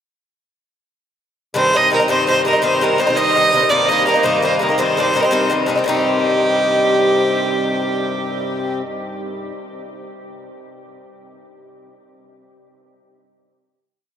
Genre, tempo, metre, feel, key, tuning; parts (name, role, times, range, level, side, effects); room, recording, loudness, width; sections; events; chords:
celtic folk; 112 BPM (dotted quarters); 6/8; straight; C minor; A4 = 439 Hz
Irish bouzouki; accompaniment; 1.5-9.5 s; G2 to Eb4; -19 LUFS; left 2 dB
clear fiddle; melody; 1.6-8.8 s; G4 to Eb5; -17 LUFS; right 2 dB
pedal harmonium; drone; 1.6-8.8 s; C3 to G3; -24 LUFS; left 1 dB
wet huge ambient reverb, RT60 8.3 s; in a vast, echoing space; -14 LUFS; side -9 dB against mid
1.5-5.8 A section; 5.8-8.0 final chord
1.5 Cm; 3.7 Eb; 4.8 Cm